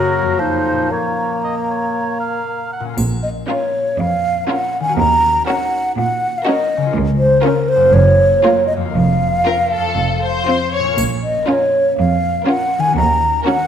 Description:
cinematic, playful, whimsical film cue; 120 BPM; 4/4; straight; Bb minor; A4 = 439 Hz
clear clarinet; second line; 0.0-2.4 s; Bb3 to Gb4; -23 LUFS; left 3 dB
mellow hollow concert flute; second line; 0.0-13.7 s; Bb4 to Bb5; -16 LUFS; equal
warm oboe; second line; 0.0-2.8 s; Bb4 to Gb5; -24 LUFS; right 3 dB
warm bassoon; accompaniment; 0.0-2.7 s; F3 to Bb3; -22 LUFS; right 1 dB
concert harp; arpeggios; 0.0-13.7 s; F2 to Db5; -24 LUFS; left 7 dB
clear studio cello section; bass; 3.0-13.4 s; Db2 to Bb2; -21 LUFS; right 4 dB
rich studio double bass section; bass; 3.0-13.4 s; F1 to Eb2; -20 LUFS; right 4 dB
triangle; percussion; 3.0-3.9, 11.0-11.9 s; -30 LUFS; left 1 dB
rich studio violin section; melody; 3.5-13.7 s; A4 to Db5; -23 LUFS; left 5 dB
rich studio violin section; second line; 3.5-13.7 s; F4 to Gb4; -25 LUFS; left 2 dB
warm studio viola section; accompaniment; 3.5-13.7 s; Bb3 to Db4; -22 LUFS; right 1 dB
moderate scoring stage reverb, RT60 1.5 s; -14 LUFS; side -8 dB against mid
0.0-3.0 A section; 3.0-13.7 A section
0.4 F7; 0.9 Bbm; 5.0 Ebm7; 7.0 Bbm/Db; 7.9 Gbmaj7; 8.9 Fsus4; 10.0 F; 11.0 Bbm; 13.0 Ebm7

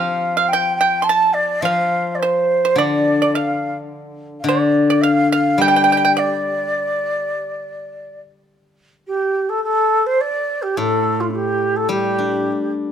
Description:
chinese traditional, Chinese chamber ensemble; 105 BPM; 4/4; straight; D yu mode; A4 = 440 Hz
xiao; melody; 0.0-12.7 s; D4 to A5; -18 LUFS; right 1 dB
pipa; second line; 0.0-8.2 s; C5 to C6; -20 LUFS; right 7 dB
steel-string zither; accompaniment; 0.0-7.3, 10.8-12.9 s; A2 to D4; -20 LUFS; left 3 dB
light reverb; close, detailed microphones; -15 LUFS; side -8 dB against mid
0.0-8.5 A section; 8.5-12.9 B section

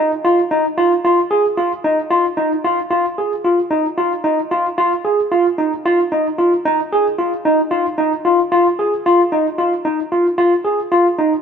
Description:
progressive instrumental, progressive; 225 BPM (eighths); 7/8; straight; A4 = 440 Hz
barky tine electric piano; solo; 0.0-11.3 s; Eb4 to Ab4; -14 LUFS; equal; lush chorus
wet echo chamber reverb, RT60 1.9 s; -14 LUFS; side -7 dB against mid
0.0-2.9 A section; 2.9-11.4 B section

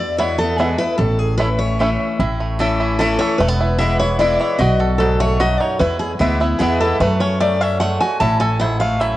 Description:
bluegrass; 150 BPM; 3/4; straight; A major; A4 = 445 Hz
picked steel-string acoustic guitar; melody; 0.0-9.2 s; F#4 to A5; -20 LUFS; left 1 dB; cassette tape
picked acoustic archtop guitar; accompaniment; 0.0-9.2 s; E2 to E4; -22 LUFS; left 2 dB; cassette tape
upright bass; bass; 0.0-9.2 s; E1 to F#2; -20 LUFS; equal
bluegrass banjo; melody; 0.2-9.2 s; A3 to A4; -22 LUFS; right 2 dB; cassette tape
light reverb, studio reverb; home recording on cassette, nothing above 10.5 kHz; -15 LUFS; side -15 dB against mid
0.0-2.2 A section; 2.2-9.2 B section
0.0 E; 1.0 A; 3.4 E; 4.6 B7; 5.8 E; 7.0 F#m; 8.2 A5

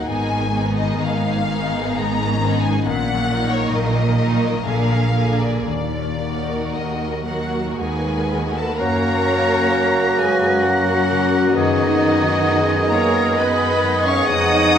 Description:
classical, slow romantic movement for symphony orchestra; 55-70 BPM; 3/4; rubato; Eb minor, F# major from 8.8 s; A4 = 441 Hz
warm symphonic violin section; melody; 0.0-14.8 s; Db5 to D#6; -25 LUFS; left 4 dB
warm symphonic violin section; second line; 0.0-14.8 s; Eb4 to F#5; -27 LUFS; left 2 dB
warm symphonic viola section; accompaniment; 0.0-14.8 s; D3 to D#5; -24 LUFS; right 2 dB
concert harp; arpeggios; 0.0-14.8 s; E#2 to G#5; -26 LUFS; left 9 dB
rich studio double bass section; bass; 0.1-14.8 s; Ab1 to F#2; -26 LUFS; right 2 dB
rich symphonic cello section; bass; 0.1-14.8 s; Eb2 to D#4; -25 LUFS; right 2 dB
clear oboe; second line; 8.8-14.8 s; C#5 to F#5; -24 LUFS; right 2 dB
mellow clarinet; second line; 8.8-14.8 s; F#4 to G#4; -26 LUFS; left 1 dB
mellow concert flute; second line; 8.8-14.8 s; G#6 to A#6; -25 LUFS; equal
mellow bassoon; accompaniment; 8.8-14.8 s; B3 to C#4; -26 LUFS; right 2 dB
clear trombone section; sustained chords; 8.8-14.8 s; C#3 to A#3; -26 LUFS; right 4 dB
warm French horn section; sustained chords; 8.8-14.8 s; B3 to G#4; -26 LUFS; left 1 dB
moderate scoring stage reverb, RT60 1.8 s; close, detailed microphones; -16 LUFS; side -8 dB against mid
0.0-8.8 A section; 8.8-14.8 B section
0.1 Abm; 2.8 Ebm/Bb; 4.7 Bb7; 5.7 Ebm; 8.8 F#; 11.6 G#m7/F#

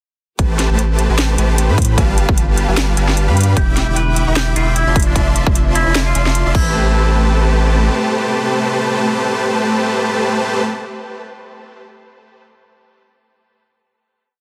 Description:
future bass; 151 BPM; 4/4; swing 56% on 16ths, half-time; A minor; A4 = 438 Hz
warm studio string section; sustained chords; 0.4-10.6 s; B2 to E5; -30 LUFS; equal
supersaw chords; riff; 0.4-10.6 s; G3 to D6; -20 LUFS; equal; cassette tape, sidechain pumping, delay
saturated sub bass; bass; 0.4-7.9 s; E1 to A2; -18 LUFS; equal; sidechain pumping
electronic kick drum; drums; 0.4-6.6 s; -18 LUFS; equal; overdrive
trap drum kit; drums; 0.4-6.6 s; crash cymbal, hi-hat, snare drum; -23 LUFS; equal
clean electric guitar; melody; 3.6-10.6 s; D4 to B4; -25 LUFS; equal; sidechain pumping, tape echo
light reverb, digital ambience; dense, heavily limited modern master; -15 LUFS; mono
0.4-6.7 drop; 6.7-9.9 final hit
drop 0.4-6.7
0.4 Am9; 2.0 G7; 3.6 Em7; 5.0 Dm9/F; 6.5 Am9

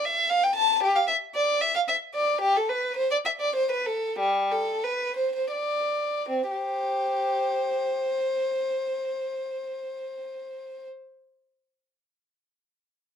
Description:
classical, baroque-style suite movement for unaccompanied violin; 76-117 BPM; 3/4; rubato; C major; A4 = 441 Hz
dark violin; solo; 0.0-10.9 s; G3 to A5; -24 LUFS; equal
light reverb; minimal, uncompressed stereo recording; -24 LUFS; side -8 dB against mid
0.0-6.3 A section; 6.3-10.7 B section
slowing down 1.6-6.3

